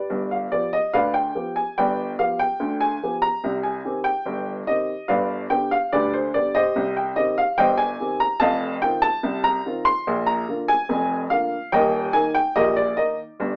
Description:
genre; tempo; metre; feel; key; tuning
ragtime piano; 72 BPM; 2/4; straight; unclear; A4 = 438 Hz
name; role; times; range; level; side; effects
dark upright piano; solo; 0.0-13.6 s; Eb1 to C6; -22 LUFS; equal; none
room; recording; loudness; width
wet small room ambience, RT60 0.5 s; rough home demo mix, AM radio sound; -22 LUFS; mono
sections
0.1-13.6 A section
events
none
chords
0.1 G7; 3.4 Cm; 5.1 G; 6.8 Cm; 8.4 F5; 10.1 Bb; 11.7 Eb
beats
| 0.10 0.94 | 1.77 2.60 | 3.43 4.26 | 5.09 5.92 | 6.75 7.58 | 8.41 9.24 | 10.07 10.90 | 11.73 12.56 | 13.39

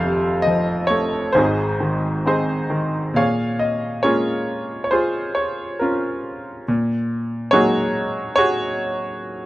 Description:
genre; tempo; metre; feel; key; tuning
classical, lyrical solo piano; 66-73 BPM; 4/4; rubato; Bb minor; A4 = 440 Hz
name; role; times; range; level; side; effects
clear grand piano; solo; 0.0-9.5 s; F1 to F5; -18 LUFS; equal; none
room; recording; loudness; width
light reverb; close, detailed microphones; -18 LUFS; side -16 dB against mid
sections
0.0-3.2 A section; 3.2-9.5 B section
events
none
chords
0.0 F; 1.3 Ab; 3.2 Bbm7; 6.7 Gb69/Bb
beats
0.47 1.35 2.25 | 3.16 4.04 4.92 5.80 | 6.67 7.52 8.37 9.21

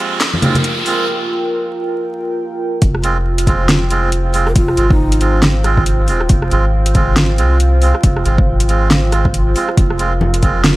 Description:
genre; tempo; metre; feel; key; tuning
deep dubstep; 138 BPM; 4/4; swing 59% on 16ths, half-time; F minor; A4 = 440 Hz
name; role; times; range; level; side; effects
dark analog pad; sustained chords; 0.0-10.8 s; F4 to G5; -21 LUFS; right 1 dB; chorus
melodica; stabs; 0.0-10.6 s; Ab3 to F4; -20 LUFS; right 4 dB; dub echo
riser; sound effects; 0.0-1.1 s; none; -22 LUFS; right 1 dB; none
deep house drum kit; drums; 0.2-10.7 s; hi-hat, rim click, snare drum; -17 LUFS; equal; overdrive, high-pass filter on hats, small room ambience, high-pass filter on snare
congas; percussion; 0.3-0.6, 10.2-10.3 s; none; -18 LUFS; equal; dub echo
soft dub sub bass; bass; 2.8-10.8 s; Eb1 to C2; -15 LUFS; equal; none
electronic kick drum; drums; 2.8-10.5 s; none; -14 LUFS; equal; overdrive, small room ambience
breathy mellow long shakuhachi; melody; 4.5-5.5 s; Eb4 to Bb4; -21 LUFS; equal; low-pass filter, dub echo
room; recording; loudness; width
light reverb, small room ambience; vinyl crackle; -12 LUFS; side -18 dB against mid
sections
0.0-2.8 A section; 2.8-10.8 B section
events
build-up 0.0-2.8; riser 0.0-1.1; filter sweep on analog synth pad 0.0-2.8; break 1.1-2.8; drop 2.8-10.8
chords
0.0 Fm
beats
0.21 0.65 | 1.08 1.51 1.95 2.38 | 2.82 3.25 3.69 4.12 | 4.56 4.99 5.43 5.86 | 6.30 6.73 7.17 7.60 | 8.04 8.47 8.91 9.34 | 9.78 10.21 10.64

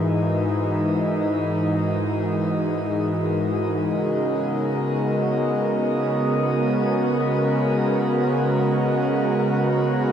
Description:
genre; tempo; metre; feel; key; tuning
ambient; free time; none; none; G# minor; A4 = 438 Hz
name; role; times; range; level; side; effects
warm analog pad; sustained chords; 0.0-10.1 s; G#2 to A#4; -20 LUFS; equal; chorus
pedal harmonium; drone; 3.9-10.1 s; G#3; -28 LUFS; equal; none
room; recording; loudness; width
wet shimmer reverb, RT60 6.8 s; none; -20 LUFS; side -8 dB against mid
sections
0.0-10.1 A section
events
none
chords
0.0 F#13/G#; 3.9 G#m11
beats
free time

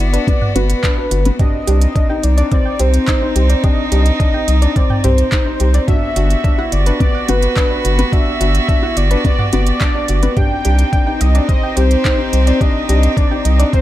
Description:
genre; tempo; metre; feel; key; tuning
piano and strings electronica; 107 BPM; 4/4; straight; unclear; A4 = 440 Hz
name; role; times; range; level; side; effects
warm velvety synth lead; melody; 0.0-13.8 s; B4 to G5; -21 LUFS; equal; chorus
warm string quartet; sustained chords; 0.0-13.8 s; B3 to G4; -22 LUFS; equal; sidechain pumping
felt-muted upright piano; riff; 0.0-13.8 s; B3 to E4; -22 LUFS; left 3 dB; none
round analog bass; bass; 0.0-13.6 s; G1 to C2; -13 LUFS; equal; sidechain pumping
soft round pluck; arpeggios; 0.1-13.7 s; F#4 to G5; -26 LUFS; equal; chorus, sidechain pumping, ping-pong delay
organic electronic drum kit; drums; 0.1-13.8 s; handclaps, hi-hat, toms; -23 LUFS; right 1 dB; none
electronic kick drum; drums; 0.3-13.8 s; none; -15 LUFS; equal; none
room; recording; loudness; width
digital ambience; none; -12 LUFS; side -14 dB against mid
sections
0.0-13.8 A section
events
none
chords
0.0 Gmaj7; 1.4 Cmadd9; 5.9 Gmaj7; 10.4 Cmadd9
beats
0.28 0.84 | 1.40 1.96 2.52 3.08 | 3.64 4.20 4.76 5.32 | 5.88 6.44 7.00 7.57 | 8.13 8.69 9.25 9.81 | 10.37 10.93 11.49 12.05 | 12.61 13.17 13.73

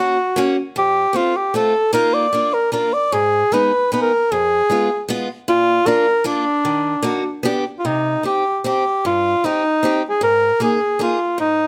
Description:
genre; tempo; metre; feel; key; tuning
alpine folk; 153 BPM; 3/4; straight; C minor from 7.9 s; A4 = 439 Hz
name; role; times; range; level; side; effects
dark cor anglais; melody; 0.0-11.7 s; D4 to D5; -18 LUFS; equal; none
picked acoustic archtop guitar; accompaniment; 0.0-11.7 s; F2 to Ab4; -25 LUFS; equal; none
room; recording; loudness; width
light reverb; close, detailed microphones; -18 LUFS; mono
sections
0.0-7.9 A section; 7.9-11.7 B section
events
none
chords
0.0 Gb; 0.8 F; 1.9 Bbsus4; 2.3 Bb; 3.1 Abm; 4.3 Fdim; 5.5 Bb; 6.7 Ebm; 7.5 G; 7.9 Cm; 10.2 Absus2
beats
0.37 | 0.76 1.15 1.54 | 1.94 2.33 2.73 | 3.13 3.52 3.92 | 4.32 4.71 5.09 | 5.48 5.87 6.26 | 6.66 7.05 7.45 | 7.86 8.25 8.65 | 9.05 9.44 9.83 | 10.22 10.61 10.99 | 11.38

